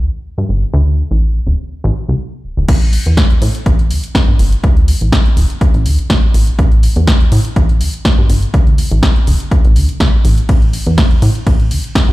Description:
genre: filtered disco house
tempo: 123 BPM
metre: 4/4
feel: swing 53% on 16ths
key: A minor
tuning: A4 = 439 Hz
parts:
  - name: plucky analog bass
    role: bass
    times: 0.0-12.1 s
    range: D1 to A2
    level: -13 LUFS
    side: equal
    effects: sidechain pumping, low-pass filter
  - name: electronic kick drum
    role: drums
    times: 2.7-12.1 s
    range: none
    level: -12 LUFS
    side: equal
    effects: none
  - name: house drum kit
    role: drums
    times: 2.7-12.1 s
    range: crash cymbal, hi-hat, ride cymbal, snare drum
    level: -20 LUFS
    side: equal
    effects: sidechain pumping on hats, sidechain pumping on cymbals
room: digital ambience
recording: played on a big sound system in a bare room, large studio reverb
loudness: -10 LUFS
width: side -18 dB against mid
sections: 0.0-2.7 A section; 2.7-12.1 B section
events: filter sweep on analog synth bass 0.0-2.7; drop 2.7-12.1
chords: none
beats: 0.25 | 0.73 1.22 1.71 2.20 | 2.69 3.17 3.66 4.15 | 4.64 5.12 5.61 6.10 | 6.59 7.08 7.56 8.05 | 8.54 9.03 9.51 10.00 | 10.49 10.98 11.47 11.95

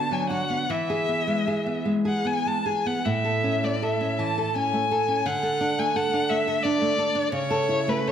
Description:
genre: romantic duo for violin and classical guitar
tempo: 49-59 BPM (dotted quarters)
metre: 6/8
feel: rubato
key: A major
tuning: A4 = 441 Hz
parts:
  - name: rich violin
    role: melody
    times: 0.0-8.1 s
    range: B4 to A5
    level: -25 LUFS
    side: left 3 dB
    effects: none
  - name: nylon-string guitar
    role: accompaniment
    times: 0.0-8.1 s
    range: A2 to A4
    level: -25 LUFS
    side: right 2 dB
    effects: none
room: wet recital hall reverb, RT60 1.6 s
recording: none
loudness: -22 LUFS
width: side -9 dB against mid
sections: 0.0-8.1 A section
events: none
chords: 0.0 Bm/D; 0.7 E; 3.1 A; 5.3 D5; 7.3 A/C#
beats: | 0.70 1.86 | 3.06 4.20 | 5.26 6.30 | 7.33

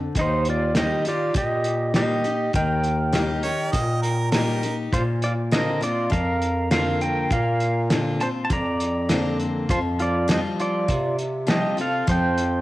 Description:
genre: honky-tonk and classic country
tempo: 101 BPM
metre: 4/4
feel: straight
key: Bb major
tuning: A4 = 440 Hz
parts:
  - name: picked steel-string acoustic guitar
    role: accompaniment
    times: 0.0-12.6 s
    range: F2 to G4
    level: -26 LUFS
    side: left 2 dB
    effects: cassette tape
  - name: mellow bass clarinet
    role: bass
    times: 0.0-12.6 s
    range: Eb2 to C3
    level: -27 LUFS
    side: equal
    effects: none
  - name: pedal steel guitar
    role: melody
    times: 0.2-12.6 s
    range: Eb4 to Bb5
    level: -25 LUFS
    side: right 1 dB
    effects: cassette tape
  - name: cloth-damped thuddy drum kit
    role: drums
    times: 0.2-12.5 s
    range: hi-hat, kick drum, snare drum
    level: -25 LUFS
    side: equal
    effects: none
  - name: clear harmonica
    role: second line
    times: 3.4-4.8 s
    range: Bb4 to Eb5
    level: -28 LUFS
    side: right 3 dB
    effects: cassette tape
room: light reverb, studio ambience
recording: home recording on cassette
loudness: -20 LUFS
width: side -16 dB against mid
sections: 0.0-12.6 A section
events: none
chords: 0.2 Eb; 4.9 Bbadd9; 9.7 Fsus2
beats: | 0.16 0.76 1.35 1.95 | 2.55 3.14 3.74 4.33 | 4.93 5.53 6.12 6.72 | 7.32 7.91 8.51 9.10 | 9.70 10.30 10.89 11.49 | 12.09

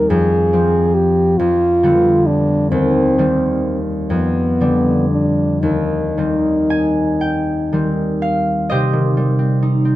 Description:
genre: classical, romantic duo for French horn and harp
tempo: 36-47 BPM (dotted quarters)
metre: 6/8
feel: rubato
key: C minor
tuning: A4 = 439 Hz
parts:
  - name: mellow French horn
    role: melody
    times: 0.0-8.2 s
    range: B3 to Bb4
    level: -16 LUFS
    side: equal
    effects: none
  - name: concert harp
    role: accompaniment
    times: 0.0-10.0 s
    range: Eb2 to Ab5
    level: -16 LUFS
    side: equal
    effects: none
room: light reverb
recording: close, detailed microphones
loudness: -14 LUFS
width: side -15 dB against mid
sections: 0.0-8.7 A section; 8.7-10.0 A section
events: none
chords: 0.1 Fm; 1.4 G7/F; 2.7 Cm/Eb; 4.1 G7/F; 5.6 Cm/Eb; 8.7 Cm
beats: | 0.11 1.41 | 2.73 4.11 | 5.62 7.24 | 8.71

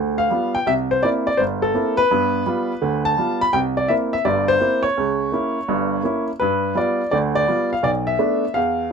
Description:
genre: solo jazz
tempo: 167 BPM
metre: 4/4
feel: swing 66% on 8ths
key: G mixolydian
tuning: A4 = 440 Hz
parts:
  - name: warm upright piano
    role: solo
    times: 0.0-8.9 s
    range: G1 to B5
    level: -18 LUFS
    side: equal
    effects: none
room: light reverb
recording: minimal, uncompressed stereo recording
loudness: -18 LUFS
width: side -6 dB against mid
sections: 0.0-8.9 A section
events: none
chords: 0.0 G7; 0.7 C7; 2.1 G7; 3.5 C7; 5.0 C#dim7; 6.4 G7; 7.8 Bmadd11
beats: 0.31 | 0.67 1.03 1.39 1.75 | 2.11 2.47 2.82 3.18 | 3.54 3.90 4.26 4.62 | 4.98 5.33 5.69 6.05 | 6.41 6.77 7.12 7.48 | 7.84 8.20 8.55 8.91

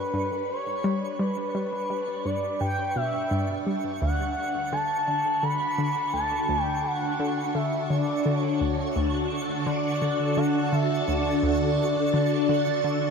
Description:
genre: ambient, sequencer-driven space music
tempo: 85 BPM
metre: 4/4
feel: straight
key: D major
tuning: A4 = 438 Hz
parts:
  - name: expressive synth lead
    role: melody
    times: 0.0-13.1 s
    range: B4 to B5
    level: -28 LUFS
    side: equal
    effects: chorus, tape echo
  - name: phased string machine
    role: sustained chords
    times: 0.0-13.1 s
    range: D3 to A5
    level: -28 LUFS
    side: equal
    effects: ensemble chorus, phaser
  - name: twinkling granular texture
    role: texture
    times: 0.0-13.1 s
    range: C#6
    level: -40 LUFS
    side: right 2 dB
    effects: built-in reverb
  - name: analog pluck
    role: riff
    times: 0.1-13.1 s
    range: D2 to G3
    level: -29 LUFS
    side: left 1 dB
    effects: chorus, cassette tape, tape echo
room: wet huge ambient reverb, RT60 7.9 s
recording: in a vast, echoing space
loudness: -23 LUFS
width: side -5 dB against mid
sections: 0.0-13.1 A section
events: fade-in on string machine 0.0-13.1; fade-in on synth texture 0.0-13.1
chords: 0.0 G; 4.0 D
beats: 0.49 | 1.20 1.90 2.61 3.31 | 4.02 4.72 5.43 6.14 | 6.84 7.55 8.25 8.96 | 9.66 10.37 11.08 11.78 | 12.49

